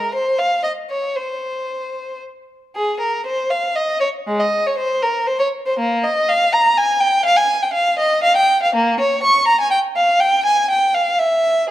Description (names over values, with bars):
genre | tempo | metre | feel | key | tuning
classical, baroque-style suite movement for unaccompanied violin | 120 BPM | 3/4 | rubato | F minor | A4 = 440 Hz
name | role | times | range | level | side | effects
rich violin | solo | 0.0-11.7 s | Ab3 to Db6 | -15 LUFS | equal | none
room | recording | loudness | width
moderate recital hall reverb, RT60 1.5 s | dark, warm production | -15 LUFS | side -14 dB against mid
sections
0.0-2.7 A section; 2.7-11.7 A section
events
none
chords
none